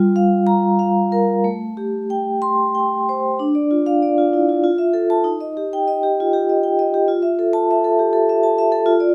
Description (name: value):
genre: classical, contemporary piece for solo vibraphone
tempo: 92-101 BPM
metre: 3/4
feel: rubato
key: unclear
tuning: A4 = 441 Hz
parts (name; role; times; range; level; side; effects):
- vibraphone with medium mallets; solo; 0.0-9.1 s; G3 to C6; -18 LUFS; equal; none
room: moderate stone room reverb, RT60 1.0 s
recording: close, detailed microphones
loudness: -18 LUFS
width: mono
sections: 0.0-3.4 A section; 3.4-9.1 B section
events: none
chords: 0.0 Gm7; 1.4 Am7; 3.4 Dm; 4.6 Fmaj7; 5.2 Eb; 7.1 Fmaj9